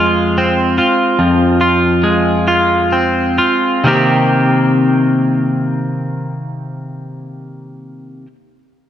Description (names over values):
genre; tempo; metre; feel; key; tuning
rock; 41-51 BPM (dotted quarters); 6/8; straight; C minor; A4 = 440 Hz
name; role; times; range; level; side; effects
twelve-string electric guitar; arpeggios; 0.0-8.3 s; F2 to G4; -12 LUFS; equal; slapback echo
room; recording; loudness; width
moderate lush hall reverb, RT60 2.7 s; none; -11 LUFS; side -10 dB against mid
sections
0.0-3.9 A section; 3.9-6.8 B section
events
slowing down 0.0-3.9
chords
0.0 Fm; 3.9 Cm7